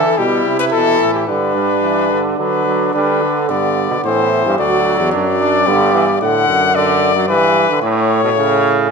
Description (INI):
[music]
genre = classical, imitative canzona for brass ensemble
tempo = 110 BPM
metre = 3/4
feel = straight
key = G major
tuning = A4 = 444 Hz
[part]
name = warm trumpet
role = melody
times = 0.0-8.7 s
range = G4 to F#5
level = -16 LUFS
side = left 7 dB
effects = none
[part]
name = mellow trumpet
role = second line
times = 0.0-6.2 s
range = B3 to F#4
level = -20 LUFS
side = right 5 dB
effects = none
[part]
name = brilliant trombone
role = accompaniment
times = 0.0-8.9 s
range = A2 to G3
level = -18 LUFS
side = right 3 dB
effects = none
[part]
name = clear bass trombone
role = bass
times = 0.0-8.9 s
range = D2 to D3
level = -18 LUFS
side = right 3 dB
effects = none
[sound]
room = wet recital hall reverb, RT60 1.5 s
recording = minimal, uncompressed stereo recording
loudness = -12 LUFS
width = side -5 dB against mid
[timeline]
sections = 0.0-2.9 A section; 2.9-8.9 B section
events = none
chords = 0.0 Em; 1.3 G; 2.4 D; 2.9 G/D; 4.0 Am; 4.6 D; 5.7 G; 6.2 D; 7.3 Em/G; 7.8 A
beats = 0.18 0.73 | 1.28 1.83 2.38 | 2.94 3.49 4.04 | 4.58 5.13 5.67 | 6.21 6.75 7.29 | 7.82 8.37